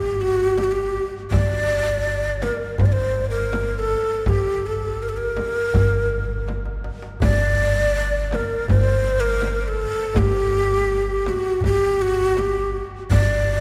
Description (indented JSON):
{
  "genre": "Arabic maqam ensemble",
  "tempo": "82 BPM",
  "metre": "4/4",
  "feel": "straight",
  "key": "G maqam nahawand",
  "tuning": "A4 = 440 Hz",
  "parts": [
    { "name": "breathy ney", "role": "melody", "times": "0.0-13.6 s", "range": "F#4 to D5", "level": "-24 LUFS", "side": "equal", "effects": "none" },
    { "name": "upright bass", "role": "bass", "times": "0.0-13.6 s", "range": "G1", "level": "-27 LUFS", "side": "equal", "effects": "none" },
    { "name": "darbuka", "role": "percussion", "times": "0.0-13.6 s", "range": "none", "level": "-32 LUFS", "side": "equal", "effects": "none" },
    { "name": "frame drum", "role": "percussion", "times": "0.6-13.3 s", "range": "none", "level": "-32 LUFS", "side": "equal", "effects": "none" }
  ],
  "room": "wet cathedral reverb, RT60 4.6 s",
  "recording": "recorded in a church or concert hall",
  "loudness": "-21 LUFS",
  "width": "mono",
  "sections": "0.0-13.6 A section",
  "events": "drum fill 6.5-7.2",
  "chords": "none",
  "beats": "0.58 | 1.32 2.06 2.79 3.53 | 4.27 5.01 5.74 6.48 | 7.22 7.95 8.69 9.42 | 10.16 10.89 11.63 12.37 | 13.10"
}